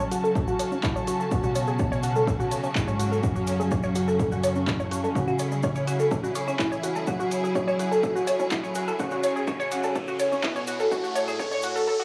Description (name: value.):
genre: melodic techno.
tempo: 125 BPM.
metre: 4/4.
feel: straight.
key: F# minor.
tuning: A4 = 440 Hz.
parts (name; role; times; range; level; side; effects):
analog synth brass; melody; 0.0-11.9 s; F#2 to F#4; -32 LUFS; equal; chorus, sidechain pumping, cassette tape, tape echo.
clear symphonic string section; sustained chords; 0.0-11.9 s; C#3 to A5; -35 LUFS; equal; sidechain pumping, low-pass filter, cassette tape.
analog pluck; arpeggios; 0.0-12.0 s; C#4 to C#5; -29 LUFS; equal; chorus, sidechain pumping, cassette tape, analog delay.
punchy analog drum machine; drums; 0.0-11.7 s; claves, congas, handclaps, hi-hat; -37 LUFS; equal; high-pass filter on perc, cassette tape, high-pass filter on hats, high-pass filter on snare, high-pass filter on room.
cabasa; percussion; 0.0-11.9 s; none; -46 LUFS; equal; none.
electronic kick drum; drums; 0.4-11.5 s; none; -32 LUFS; equal; cassette tape.
riser; sound effects; 7.6-12.0 s; none; -41 LUFS; equal; none.
room: wet booth ambience, RT60 0.2 s.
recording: home recording on cassette, high-pass filter, studio ambience.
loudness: -26 LUFS.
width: mono.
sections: 0.0-12.0 A section.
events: build-up 0.0-12.0; filter sweep on synth pluck 0.0-12.0; filter sweep on analog polysynth 0.0-12.0; filter sweep on string section 0.0-12.0; filter sweep 0.0-12.0; riser 7.6-12.0.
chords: 0.0 F#m.